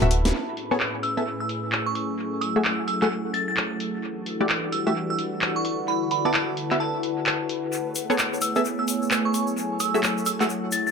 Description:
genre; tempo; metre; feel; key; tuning
UK garage, two-step garage; 130 BPM; 4/4; swing 62% on 16ths; A major; A4 = 441 Hz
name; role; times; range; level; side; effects
glassy synth bell; melody; 0.0-10.9 s; A5 to A6; -29 LUFS; right 4 dB; chorus, phaser, dub echo
airy breathy pad; sustained chords; 0.0-10.9 s; A2 to C#5; -32 LUFS; left 1 dB; chorus
punchy chord stab; stabs; 0.0-10.5 s; A3 to F#5; -26 LUFS; equal; chorus, tape echo
house drum kit; drums; 0.0-10.8 s; handclaps, hi-hat, snare drum; -27 LUFS; equal; low-pass filter on hats, low-pass filter on snare, low-pass filter on perc, low-pass filter on room, dub echo
warbly tape-like pad; texture; 0.0-10.9 s; G3 to B5; -30 LUFS; left 1 dB; chorus, built-in reverb, phaser
egg shaker; percussion; 7.7-10.9 s; none; -33 LUFS; left 5 dB; none
room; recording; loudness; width
moderate spring reverb, RT60 1.9 s, digital ambience; echo-heavy mix; -22 LUFS; side -6 dB against mid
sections
0.3-10.9 A section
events
drum fill 0.0-0.3; band accent 0.2; filter sweep on analog synth pad 0.3-10.9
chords
0.3 Amaj9; 2.0 F#m9; 4.0 Em11; 5.6 D69; 7.7 Amaj9; 9.3 F#m9

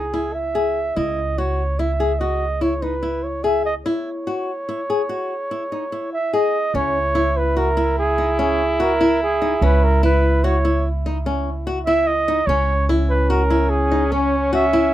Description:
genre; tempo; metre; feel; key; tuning
contemporary instrumental, chamber music in an uneven meter; 146 BPM; 7/4; straight; C# dorian; A4 = 441 Hz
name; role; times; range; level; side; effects
breathy flugelhorn; melody; 0.0-14.9 s; G#4 to E5; -21 LUFS; right 2 dB; none
flamenco guitar; arpeggios; 0.0-14.9 s; C#4 to G#4; -23 LUFS; left 3 dB; none
upright bass; bass; 0.0-14.9 s; C#2; -22 LUFS; right 1 dB; none
clear French horn; second line; 6.7-14.9 s; C#4 to E4; -24 LUFS; equal; none
room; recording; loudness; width
little or no reverb; close, detailed microphones; -17 LUFS; side -13 dB against mid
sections
0.0-6.7 A section; 6.7-14.9 A section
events
none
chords
0.0 C#m

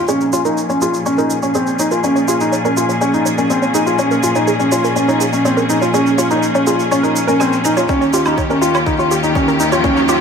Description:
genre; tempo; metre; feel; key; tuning
piano and strings electronica; 123 BPM; 4/4; straight; Bb dorian; A4 = 440 Hz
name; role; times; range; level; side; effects
rich studio string section; sustained chords; 0.0-10.2 s; Eb2 to Ab4; -18 LUFS; left 2 dB; low-pass filter
felt-muted upright piano; riff; 0.0-10.1 s; C4 to F4; -15 LUFS; equal; ping-pong delay
analog pluck; arpeggios; 0.1-10.1 s; G4 to Bb5; -22 LUFS; right 4 dB; chorus, cassette tape, sidechain pumping, ping-pong delay
shaker and woodblock; drums; 0.1-10.2 s; none; -26 LUFS; right 4 dB; none
electronic kick drum; drums; 7.9-9.9 s; none; -21 LUFS; right 1 dB; none
riser; sound effects; 9.2-10.2 s; none; -24 LUFS; right 1 dB; none
room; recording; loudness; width
moderate lush hall reverb, RT60 1.8 s, digital ambience; none; -13 LUFS; side -6 dB against mid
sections
0.1-10.2 A section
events
build-up 0.1-10.2; filter sweep on string section 0.1-10.2; filter sweep on synth arpeggio sound 0.1-10.2; riser 9.2-10.2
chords
0.1 Bbm7; 7.9 Eb7

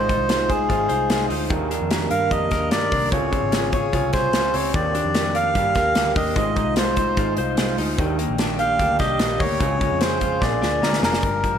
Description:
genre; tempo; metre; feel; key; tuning
jangly indie pop; 148 BPM; 4/4; straight; Eb major; A4 = 440 Hz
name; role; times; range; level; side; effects
melodica; melody; 0.0-11.6 s; Ab4 to F5; -22 LUFS; equal; tape echo
electric guitar through a small old amp; accompaniment; 0.0-11.2 s; Bb2 to C5; -26 LUFS; right 4 dB; slapback echo
direct-recorded clean electric guitar; arpeggios; 0.0-11.6 s; G2 to C5; -27 LUFS; left 4 dB; slapback echo
vintage muted picked electric bass; bass; 0.0-11.6 s; F1 to G2; -28 LUFS; equal; none
modern studio drum kit; drums; 0.1-11.5 s; hi-hat, kick drum, snare drum; -24 LUFS; equal; none
room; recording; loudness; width
moderate lush hall reverb, RT60 2.2 s; big arena sound; -18 LUFS; side -8 dB against mid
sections
0.0-11.2 A section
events
drum fill 10.4-11.2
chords
0.0 Ab6; 1.5 Ebmaj7; 3.1 Dbmaj7; 4.7 Ebmaj7; 6.4 Ab6; 8.0 Ebmaj7; 9.6 Dbmaj7; 10.4 Bb7

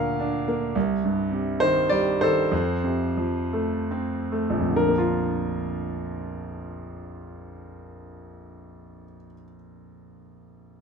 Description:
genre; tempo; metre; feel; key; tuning
classical, lyrical solo piano; 70-109 BPM; 3/4; rubato; Bb major; A4 = 441 Hz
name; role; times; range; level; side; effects
clear concert grand piano; solo; 0.0-10.8 s; Bb1 to F5; -24 LUFS; right 1 dB; none
room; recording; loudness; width
moderate studio reverb, RT60 0.5 s; minimal, uncompressed stereo recording; -22 LUFS; side -6 dB against mid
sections
0.0-4.7 A section; 4.7-9.6 B section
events
slowing down 0.8-4.7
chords
0.0 Bb/D; 0.8 Cm; 2.5 F; 4.7 Bb

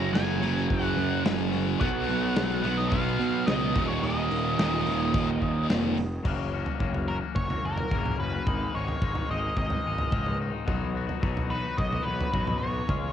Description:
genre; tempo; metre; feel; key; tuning
quiet-loud alternative rock; 108 BPM; 4/4; straight; unclear; A4 = 440 Hz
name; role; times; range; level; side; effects
octave-fuzz lead guitar; melody; 0.0-13.1 s; Bb4 to Bb5; -32 LUFS; right 1 dB; distortion, cassette tape, tape echo
high-gain distorted guitar; riff; 0.0-6.0 s; Eb2 to B3; -31 LUFS; left 11 dB; distortion, cassette tape
thick fuzz guitar; riff; 0.0-6.0 s; Eb2 to B3; -29 LUFS; right 11 dB; distortion, cassette tape
fuzz picked electric bass; bass; 0.0-13.1 s; Eb1 to B2; -31 LUFS; equal; overdrive
big rock drum kit; drums; 0.1-13.0 s; crash cymbal, hi-hat, kick drum, snare drum, toms; -30 LUFS; equal; cassette tape
twangy electric guitar; arpeggios; 6.2-13.1 s; Gb2 to Ab4; -33 LUFS; left 10 dB; cassette tape
room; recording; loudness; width
light reverb, studio reverb; home recording on cassette; -25 LUFS; side -9 dB against mid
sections
0.0-6.3 A section; 6.3-13.1 B section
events
none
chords
0.0 Gb5; 1.8 B5; 3.8 Eb5; 6.3 Gb; 8.5 Absus2; 10.7 B

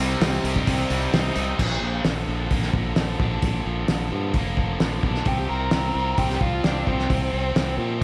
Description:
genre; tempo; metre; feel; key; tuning
classic rock; 131 BPM; 4/4; straight; unclear; A4 = 440 Hz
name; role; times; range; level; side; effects
biting overdriven guitar; riff; 0.0-1.6 s; C3 to C4; -32 LUFS; equal; none
cranked stack guitar; riff; 0.0-1.6 s; C3 to G4; -33 LUFS; equal; overdrive
distorted electric guitar; riff; 0.0-8.0 s; Bb2 to G4; -31 LUFS; equal; distortion
modern bright fingered electric bass; bass; 0.0-8.0 s; F1 to Bb2; -29 LUFS; equal; none
cloth-damped thuddy drum kit; drums; 0.2-8.0 s; crash cymbal, hi-hat, kick drum, snare drum; -27 LUFS; equal; none
octave-fuzz lead guitar; second line; 5.3-7.8 s; C4 to Bb4; -29 LUFS; equal; distortion, slapback echo
room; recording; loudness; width
moderate lush hall reverb, RT60 2.1 s; big arena sound; -23 LUFS; mono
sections
0.0-1.6 A section; 1.6-8.0 B section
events
none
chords
0.0 Cm; 1.6 Bb; 5.3 Csus4

